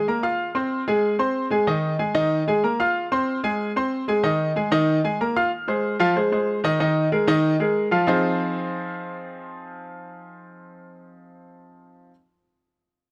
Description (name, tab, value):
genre	latin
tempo	187 BPM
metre	4/4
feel	straight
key	F minor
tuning	A4 = 441 Hz
part	clear grand piano	solo	0.0-12.1 s	Eb3 to F6	-23 LUFS	equal	none
room	light reverb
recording	close, detailed microphones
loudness	-22 LUFS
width	mono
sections	0.0-5.5 A section; 5.5-8.1 B section; 8.1-10.7 C section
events	none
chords	0.4 Fm; 1.7 Ebsus4; 3.0 Fm; 4.2 Ebsus4; 5.5 Fm7; 6.8 Ebsus4; 8.1 Fm7